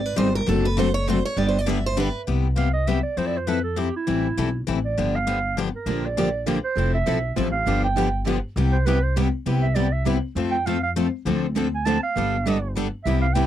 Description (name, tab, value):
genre	acoustic string swing (jazz manouche)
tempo	200 BPM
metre	3/4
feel	swing 58% on 8ths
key	C major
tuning	A4 = 440 Hz
part	picked steel-string acoustic guitar	melody	0.0-2.2 s	A4 to E5	-26 LUFS	right 4 dB	none
part	upright bass	bass	0.0-13.5 s	F1 to F2	-24 LUFS	equal	none
part	picked steel-string acoustic guitar	accompaniment	0.2-13.5 s	C3 to A4	-26 LUFS	left 8 dB	none
part	picked steel-string acoustic guitar	accompaniment	0.2-2.1, 5.9-13.5 s	C3 to A4	-27 LUFS	right 7 dB	none
part	breathy clarinet	second line	2.6-13.5 s	E4 to A5	-26 LUFS	right 5 dB	none
room	little or no reverb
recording	dry, close 1970s-style studio recording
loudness	-20 LUFS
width	side -11 dB against mid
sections	0.0-2.3 A section; 2.3-9.5 A section; 9.5-13.5 A section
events	steel-string acoustic guitar solo 0.0-2.3; clarinet solo 2.3-13.5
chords	0.5 D7/F#; 1.4 G; 2.3 Cmaj7; 3.2 Fmaj7; 4.1 Am7; 5.0 G7; 5.9 Bb6; 6.8 Fmaj7; 7.7 G7; 8.6 Cmaj7; 10.4 F; 11.3 Dm7; 12.2 Gadd9